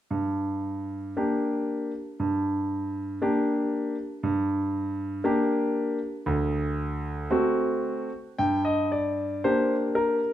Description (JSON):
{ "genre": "classical-period piano sonatina", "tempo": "117 BPM", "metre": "4/4", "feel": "rubato", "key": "G minor", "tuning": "A4 = 440 Hz", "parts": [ { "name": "clear concert grand piano", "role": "solo", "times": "0.1-10.3 s", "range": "D2 to G5", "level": "-25 LUFS", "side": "equal", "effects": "none" } ], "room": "moderate recital hall reverb, RT60 1.4 s", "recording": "minimal, uncompressed stereo recording", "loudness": "-25 LUFS", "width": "side -12 dB against mid", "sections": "0.1-8.4 A section; 8.4-10.3 B section", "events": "none", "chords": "0.1 Gm; 6.3 D7; 8.4 Gm" }